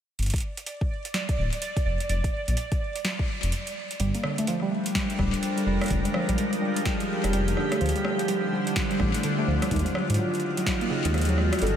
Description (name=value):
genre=IDM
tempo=126 BPM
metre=4/4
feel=swing 62% on 16ths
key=unclear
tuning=A4 = 440 Hz
part: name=dark detuned saw bass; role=bass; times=0.2-11.7 s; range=D1 to Ab2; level=-26 LUFS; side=equal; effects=none
part: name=electro analog drum machine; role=drums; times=0.2-11.8 s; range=hi-hat, rim click, snare drum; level=-32 LUFS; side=equal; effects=overdrive, ping-pong delay
part: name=pulsing gated texture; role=texture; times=0.2-4.0 s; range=D5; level=-36 LUFS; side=right 4 dB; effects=chorus, built-in reverb
part: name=electronic kick drum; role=drums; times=0.3-10.8 s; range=none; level=-28 LUFS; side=equal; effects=none
part: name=icy glass pad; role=sustained chords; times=4.5-11.8 s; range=D3 to Db5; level=-28 LUFS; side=equal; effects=chorus, built-in reverb, vintage 12-bit sampler grit
part: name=warbly dusty pluck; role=arpeggios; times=4.0-11.7 s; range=Db3 to Bb3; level=-28 LUFS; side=equal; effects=wide subtle chorus, ping-pong delay
part: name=warbly nostalgic lead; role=melody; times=11.6-11.8 s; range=A4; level=-28 LUFS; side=right 2 dB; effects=analog chorus
room=moderate huge ambient reverb, RT60 8.4 s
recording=dreamy mix soaked in reverb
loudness=-24 LUFS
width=side -9 dB against mid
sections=0.2-4.0 A section; 4.0-11.8 B section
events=break 3.5-4.0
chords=0.2 G5; 1.9 N.C.; 4.0 Gm11; 5.7 Fm11; 7.6 Dm11; 9.7 Ebm11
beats=| 0.19 0.67 1.14 1.62 | 2.09 2.57 3.05 3.52 | 4.00 4.47 4.95 5.43 | 5.90 6.38 6.86 7.33 | 7.81 8.28 8.76 9.24 | 9.71 10.19 10.66 11.14 | 11.62